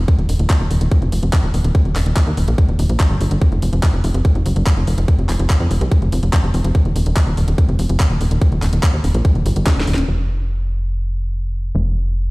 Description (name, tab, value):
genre	psychedelic trance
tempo	144 BPM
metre	4/4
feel	straight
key	unclear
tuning	A4 = 440 Hz
part	tight sequencer bass	bass	0.0-12.3 s	Eb1 to F2	-16 LUFS	equal	none
part	electronic kick drum	drums	0.1-9.7 s	none	-13 LUFS	equal	overdrive, studio reverb
part	garage drum kit	drums	0.1-10.1 s	handclaps, hi-hat, snare drum	-26 LUFS	equal	overdrive, studio reverb
room	digital ambience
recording	played on a big sound system in a bare room, large studio reverb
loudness	-14 LUFS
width	side -24 dB against mid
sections	0.0-10.1 A section; 10.1-12.3 B section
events	drum fill 9.7-10.1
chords	none